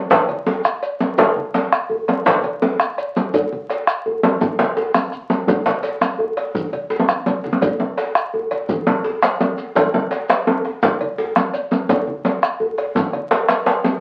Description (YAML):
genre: west african traditional, West African drum ensemble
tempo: 112 BPM (dotted quarters)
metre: 12/8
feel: straight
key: none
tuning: none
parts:
  - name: bombo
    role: percussion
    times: 0.1-13.8 s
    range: none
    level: -24 LUFS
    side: equal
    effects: none
  - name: congas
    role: percussion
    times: 0.1-13.9 s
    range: none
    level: -28 LUFS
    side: equal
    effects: none
  - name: djembe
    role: percussion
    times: 0.1-14.0 s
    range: none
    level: -27 LUFS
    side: equal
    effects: none
  - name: djembe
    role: percussion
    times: 0.1-14.0 s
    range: none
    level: -20 LUFS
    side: equal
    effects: none
  - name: shekere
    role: percussion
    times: 0.1-13.9 s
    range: none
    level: -44 LUFS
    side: equal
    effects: none
  - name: cowbell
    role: percussion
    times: 0.3-13.8 s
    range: none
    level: -28 LUFS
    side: equal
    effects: none
room: wet studio reverb, RT60 0.6 s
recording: very old 78 rpm record, vinyl crackle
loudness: -19 LUFS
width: mono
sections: 0.0-14.0 A section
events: drum fill 7.1-7.6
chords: none